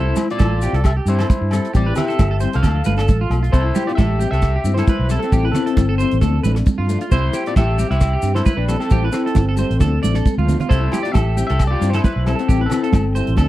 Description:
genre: highlife guitar band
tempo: 134 BPM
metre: 4/4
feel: swing 55% on 16ths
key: C major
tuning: A4 = 440 Hz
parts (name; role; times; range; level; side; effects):
- electric guitar at the edge of break-up; melody; 0.0-13.5 s; C4 to F5; -23 LUFS; left 2 dB; analog chorus
- fingerpicked steel-string acoustic guitar; accompaniment; 0.0-13.5 s; F3 to A4; -25 LUFS; left 7 dB; none
- electric guitar at the edge of break-up; arpeggios; 0.0-13.5 s; E4 to D5; -26 LUFS; right 6 dB; lush chorus, slapback echo
- fingered electric bass; bass; 0.0-13.5 s; G1 to G2; -18 LUFS; equal; none
- damped 70s drum kit; drums; 0.2-13.5 s; hi-hat, kick drum, rim click; -16 LUFS; equal; none
- agogo bells; percussion; 0.2-3.4, 10.9-13.5 s; none; -34 LUFS; left 5 dB; none
- congas; percussion; 0.2-13.5 s; none; -24 LUFS; right 5 dB; none
- maracas; percussion; 0.2-13.5 s; none; -39 LUFS; left 8 dB; none
room: little or no reverb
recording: dry, close 1970s-style studio recording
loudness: -15 LUFS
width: side -15 dB against mid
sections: 0.0-3.5 A section; 3.5-13.5 A section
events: drum fill 10.2-10.7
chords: 0.0 C; 1.7 Am7; 2.6 Dm; 3.5 C; 5.3 Am7; 6.2 Dm; 7.1 C; 8.9 Am7; 9.8 Dm; 10.7 C; 12.5 Am7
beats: 0.39 0.83 1.28 | 1.73 2.18 2.62 3.07 | 3.52 3.97 4.42 4.87 | 5.31 5.76 6.21 6.66 | 7.11 7.56 8.01 8.45 | 8.90 9.35 9.80 10.24 | 10.69 11.14 11.59 12.03 | 12.48 12.93 13.37

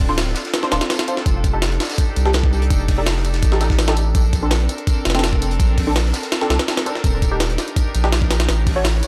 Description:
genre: drum and bass, jungle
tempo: 166 BPM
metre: 4/4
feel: straight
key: unclear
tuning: A4 = 440 Hz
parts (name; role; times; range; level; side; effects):
- warbly tape-like pad; sustained chords; 0.0-9.1 s; C4 to C#5; -30 LUFS; equal; chorus, built-in reverb
- saturated sub bass; bass; 0.0-9.0 s; D1 to C2; -21 LUFS; equal; none
- crunchy breakbeat drum kit; drums; 0.0-9.1 s; hi-hat, snare drum, tambourine; -34 LUFS; equal; high-pass filter on hats, high-pass filter on snare, high-pass filter on perc, high-pass filter on room
- filtered dub chord stab; stabs; 0.1-8.8 s; C4 to C#5; -27 LUFS; equal; phaser, ensemble chorus, dub echo
- jungle sampler-style drum kit; drums; 0.2-9.1 s; hi-hat, kick drum, snare drum; -22 LUFS; equal; none
room: studio ambience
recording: dry, gritty hardware recording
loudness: -18 LUFS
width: mono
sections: 0.0-9.1 A section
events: none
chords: 0.0 Dm7; 1.3 F13; 4.2 Bbmaj9; 7.0 Ebmaj7; 8.5 A6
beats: 0.17 0.54 0.90 | 1.26 1.62 1.98 2.34 | 2.71 3.07 3.43 3.79 | 4.15 4.51 4.87 5.24 | 5.60 5.96 6.32 6.68 | 7.04 7.40 7.76 8.13 | 8.49 8.85

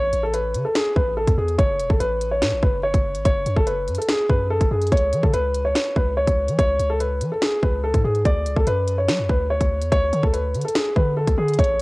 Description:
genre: hip hop, drill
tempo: 144 BPM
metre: 4/4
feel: half-time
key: unclear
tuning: A4 = 442 Hz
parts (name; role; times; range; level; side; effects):
- dark concert grand piano; melody; 0.0-11.8 s; G#4 to D5; -22 LUFS; equal; cassette tape
- long sustained 808-style bass; bass; 0.0-11.8 s; E1 to F#3; -25 LUFS; equal; none
- drill drum kit; drums; 0.1-11.8 s; hi-hat, kick drum, snare drum; -21 LUFS; equal; cassette tape
room: light reverb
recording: home recording on cassette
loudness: -18 LUFS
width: side -23 dB against mid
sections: 0.0-11.8 A section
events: none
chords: 0.0 A5; 1.6 F#m; 4.9 N.C.; 8.3 D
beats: 0.34 0.75 1.17 | 1.59 2.00 2.42 2.84 | 3.25 3.67 4.09 4.50 | 4.92 5.34 5.75 6.17 | 6.59 7.00 7.42 7.84 | 8.25 8.67 9.09 9.50 | 9.92 10.34 10.75 11.17 | 11.59

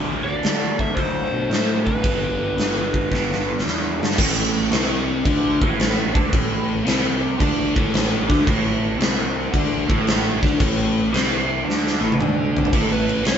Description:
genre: blues rock power trio and southern rock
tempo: 112 BPM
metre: 4/4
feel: swing 68% on 8ths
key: unclear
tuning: A4 = 439 Hz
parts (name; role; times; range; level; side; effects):
- raw garage guitar; riff; 0.0-13.4 s; G2 to D4; -22 LUFS; equal; overdrive, phaser
- fuzz picked electric bass; bass; 0.0-13.4 s; G1 to D3; -26 LUFS; equal; overdrive
- overdriven slide guitar; melody; 0.2-3.6, 12.8-13.4 s; A4 to E5; -26 LUFS; left 1 dB; none
- huge arena drum kit; drums; 0.4-13.4 s; crash cymbal, hi-hat, kick drum, snare drum, toms; -21 LUFS; equal; none
room: moderate studio ambience, RT60 0.5 s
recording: band playing live in one room, nothing above 7.8 kHz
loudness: -18 LUFS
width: side -8 dB against mid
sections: 0.0-4.2 A section; 4.2-12.7 B section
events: drum fill 3.1-4.2, 11.7-12.7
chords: 0.0 D; 2.0 G; 4.2 Amadd11; 12.7 A5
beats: 0.43 0.96 1.50 | 2.04 2.57 3.11 3.64 | 4.18 4.71 5.25 5.78 | 6.32 6.85 7.38 7.92 | 8.45 8.98 9.52 10.05 | 10.59 11.12 11.65 12.19 | 12.72 13.26

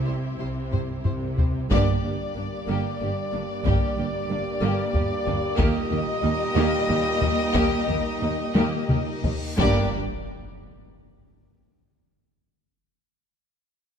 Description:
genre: cinematic, epic orchestral film score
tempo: 91 BPM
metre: 3/4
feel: straight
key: G minor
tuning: A4 = 440 Hz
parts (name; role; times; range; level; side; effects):
- warm studio string section; sustained chords; 0.0-10.0 s; Bb3 to D5; -34 LUFS; equal; none
- dark symphonic cello section; bass; 0.0-10.0 s; Eb2 to C3; -29 LUFS; right 2 dB; none
- warm symphonic double bass section; bass; 0.0-10.0 s; G1 to Eb2; -30 LUFS; right 3 dB; none
- warm chamber violin section; melody; 0.1-10.0 s; C5 to Eb5; -32 LUFS; left 7 dB; none
- dark symphonic violin section; second line; 0.1-10.0 s; D4 to G4; -33 LUFS; left 5 dB; none
- warm symphonic viola section; accompaniment; 0.1-10.0 s; G3 to Bb3; -32 LUFS; right 2 dB; none
- taiko ensemble; drums; 0.7-10.9 s; none; -26 LUFS; left 1 dB; none
- bright trombone section; sustained chords; 1.7-9.9 s; G2 to G3; -36 LUFS; right 4 dB; none
- mellow French horn section; sustained chords; 1.7-9.9 s; Bb3 to G4; -34 LUFS; left 3 dB; none
- clear trumpet section; stabs; 1.7-9.9 s; D5 to Eb5; -32 LUFS; right 2 dB; none
- reverse cymbal and impact; sound effects; 9.1-11.6 s; none; -37 LUFS; left 1 dB; none
room: moderate scoring stage reverb, RT60 2.1 s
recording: close, detailed microphones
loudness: -22 LUFS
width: side -7 dB against mid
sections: 0.0-1.7 A section; 1.7-9.6 B section; 9.6-11.7 C section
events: drum fill 0.7-1.7, 8.6-9.6; band accent 1.7-2.4; reverse cymbal 9.1-9.6; impact 9.6-11.7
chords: 0.0 C; 1.7 Gm; 5.6 Eb; 9.6 Gm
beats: 0.38 1.04 | 1.71 2.36 3.00 | 3.65 4.30 4.94 | 5.59 6.24 6.89 | 7.55 8.22 8.90 | 9.59 10.28 10.97

